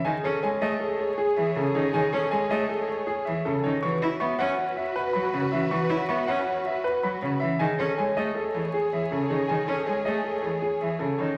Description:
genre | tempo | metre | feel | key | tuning
classical, minimalist pattern music | 159 BPM | 5/4 | straight | unclear | A4 = 440 Hz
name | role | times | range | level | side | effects
warm concert grand piano | melody | 0.0-11.4 s | G#4 to C#6 | -31 LUFS | equal | none
rich cello | accompaniment | 0.0-11.3 s | C#3 to E4 | -32 LUFS | equal | none
vibraphone with soft mallets | arpeggios | 0.0-11.2 s | C#4 to E5 | -33 LUFS | equal | none
mellow alto flute | second line | 0.1-11.1 s | F#4 to G#4 | -34 LUFS | equal | none
rich symphonic string section | sustained chords | 0.1-11.1 s | F#4 to C#5 | -38 LUFS | equal | none
room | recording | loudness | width
wet scoring stage reverb, RT60 2.0 s | vinyl crackle | -26 LUFS | mono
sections
0.0-11.4 A section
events
none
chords
0.1 Amaj7; 3.8 Esus2; 7.6 Amaj7

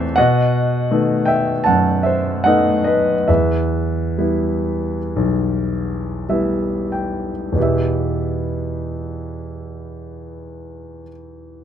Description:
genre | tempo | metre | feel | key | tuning
classical, lyrical solo piano | 46-83 BPM | 4/4 | rubato | E minor | A4 = 438 Hz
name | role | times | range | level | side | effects
warm grand piano | solo | 0.0-11.6 s | B1 to A5 | -17 LUFS | equal | none
room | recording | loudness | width
light reverb | close, detailed microphones | -16 LUFS | side -9 dB against mid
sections
0.0-7.6 A section; 7.6-11.6 B section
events
slowing down 0.2-7.6; grand piano fill 5.7-7.6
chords
0.2 B7; 3.3 Em

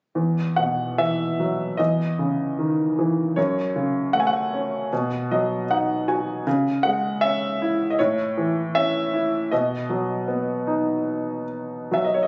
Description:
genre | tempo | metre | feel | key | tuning
classical, lyrical solo piano | 77 BPM | 4/4 | rubato | E major | A4 = 440 Hz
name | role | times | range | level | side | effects
bright baby grand piano | solo | 0.2-12.3 s | E2 to G#5 | -23 LUFS | equal | none
room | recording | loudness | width
light reverb | recorded on a phone in the room, club reverb, nothing above 7.7 kHz | -23 LUFS | mono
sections
0.2-12.3 A section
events
grand piano fill 4.9-6.5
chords
0.2 Esus2; 1.8 C#madd9/E; 3.4 F#m; 4.9 B; 6.5 C#m; 8.0 A; 9.5 B

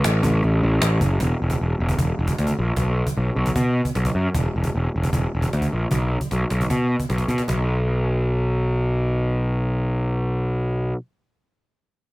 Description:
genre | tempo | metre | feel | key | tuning
indie rock | 153 BPM | 4/4 | straight | B minor | A4 = 440 Hz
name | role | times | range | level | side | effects
fuzz picked electric bass | bass | 0.0-10.9 s | E1 to B2 | -20 LUFS | equal | overdrive
cajon | drums | 0.0-7.6 s | none | -27 LUFS | right 1 dB | none
room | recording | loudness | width
small room ambience | none | -20 LUFS | side -20 dB against mid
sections
0.0-1.2 A section; 1.2-7.5 B section; 7.5-10.6 C section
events
none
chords
none

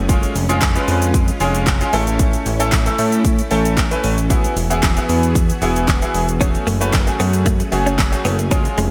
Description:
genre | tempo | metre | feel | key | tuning
dance-pop | 114 BPM | 4/4 | straight | unclear | A4 = 444 Hz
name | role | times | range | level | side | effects
soft string machine | sustained chords | 0.0-8.9 s | E3 to G#4 | -29 LUFS | equal | ensemble chorus, sidechain pumping
fat analog bass | bass | 0.0-8.9 s | E1 to A2 | -21 LUFS | equal | sidechain pumping
clear baby grand piano | accompaniment | 0.1-8.7 s | G#3 to B4 | -23 LUFS | equal | analog chorus, sidechain pumping
pop drum kit | drums | 0.1-8.9 s | handclaps, hi-hat, kick drum, shaker, snare drum | -21 LUFS | equal | gated reverb
egg shaker | percussion | 0.1-8.9 s | none | -38 LUFS | equal | none
direct-recorded clean electric guitar | riff | 6.4-8.9 s | G#3 to C#4 | -26 LUFS | equal | ensemble chorus
room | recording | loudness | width
light reverb | bright 1980s-style digital production | -17 LUFS | mono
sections
0.0-8.9 A section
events
none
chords
0.1 C#/E#; 1.9 A; 4.3 Eadd9; 6.4 F#madd9

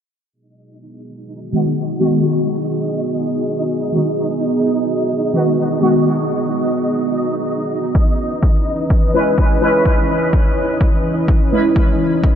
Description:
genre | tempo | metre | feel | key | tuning
dub techno | 126 BPM | 4/4 | swing 56% on 16ths | G# minor | A4 = 440 Hz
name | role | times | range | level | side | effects
dark analog pad | sustained chords | 1.4-12.4 s | E3 to C#5 | -20 LUFS | equal | chorus, sidechain pumping
flickering grainy texture | texture | 1.3-12.4 s | D#4 to D#5 | -25 LUFS | right 1 dB | built-in reverb, sidechain pumping
resonant sweep polysynth | stabs | 1.5-6.1, 9.1-11.7 s | D#3 to B4 | -18 LUFS | equal | chorus, phaser, sidechain pumping, dub echo
electronic kick drum | drums | 8.0-12.3 s | none | -14 LUFS | equal | none
room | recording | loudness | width
wet huge ambient reverb, RT60 6.9 s | dreamy mix soaked in reverb, low-pass filter | -14 LUFS | side -9 dB against mid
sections
0.3-12.4 A section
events
filter sweep on analog polysynth 0.3-12.4; filter sweep 0.3-12.4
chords
0.3 G#m7; 8.0 C#m7

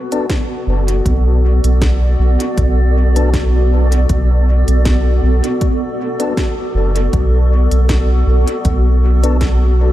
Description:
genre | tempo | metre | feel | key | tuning
ambient dub | 79 BPM | 4/4 | swing 54% on 16ths | B minor | A4 = 444 Hz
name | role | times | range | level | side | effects
granular cloud pad | sustained chords | 0.0-9.9 s | B3 to D5 | -19 LUFS | equal | built-in reverb
mellow tonewheel organ | stabs | 0.1-9.4 s | B3 to A4 | -25 LUFS | left 3 dB | overdrive, fast rotary speaker, dub echo
organic electronic drum kit | drums | 0.1-9.6 s | hi-hat, snare drum | -27 LUFS | equal | studio reverb, dub echo
electronic kick drum | drums | 0.3-9.6 s | none | -18 LUFS | equal | overdrive, studio reverb
round analog bass | bass | 0.7-9.9 s | F#1 to B1 | -12 LUFS | equal | none
room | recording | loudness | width
light reverb | none | -12 LUFS | side -14 dB against mid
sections
0.0-9.9 A section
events
none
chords
0.0 Bm7

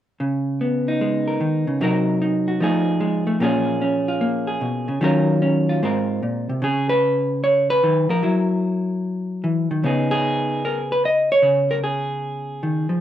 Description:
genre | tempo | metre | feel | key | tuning
solo jazz | 150 BPM | 4/4 | swing 66% on 8ths | Db mixolydian | A4 = 440 Hz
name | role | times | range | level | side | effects
vintage hollow-body jazz guitar | solo | 0.2-13.0 s | Ab2 to Eb5 | -18 LUFS | equal | none
room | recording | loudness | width
light reverb | worn, warbling old tape, cassette tape, warbly pitch drift | -18 LUFS | side -11 dB against mid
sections
0.2-6.6 A section; 6.6-13.0 B section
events
none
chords
0.2 Dbsus2; 1.8 Cm7b5; 2.6 F7#9; 3.4 Bbm7; 5.0 Ebm9; 5.8 Ab69; 6.6 Db7sus2; 8.2 Gb7; 9.8 Db7sus2

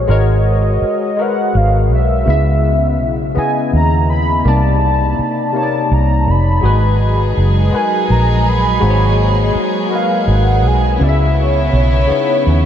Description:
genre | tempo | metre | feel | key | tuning
R&B | 55 BPM (dotted quarters) | 6/8 | straight | unclear | A4 = 440 Hz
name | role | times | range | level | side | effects
warm velvety synth lead | melody | 0.0-12.7 s | Db5 to Cb6 | -18 LUFS | right 1 dB | chorus, analog delay
barky tine electric piano | accompaniment | 0.0-12.7 s | C3 to Fb5 | -18 LUFS | left 4 dB | analog chorus
vintage muted fingered electric bass | bass | 0.0-12.7 s | F1 to Eb2 | -13 LUFS | equal | none
warm studio string section | sustained chords | 6.6-12.7 s | Db3 to Ab4 | -21 LUFS | right 2 dB | none
room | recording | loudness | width
moderate huge ambient reverb, RT60 8.3 s | dreamy mix soaked in reverb | -12 LUFS | side -9 dB against mid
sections
0.0-12.7 A section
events
none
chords
0.0 Abm9; 2.3 Dbm9; 4.4 Cm9; 6.6 Abm9; 11.0 Dbm9

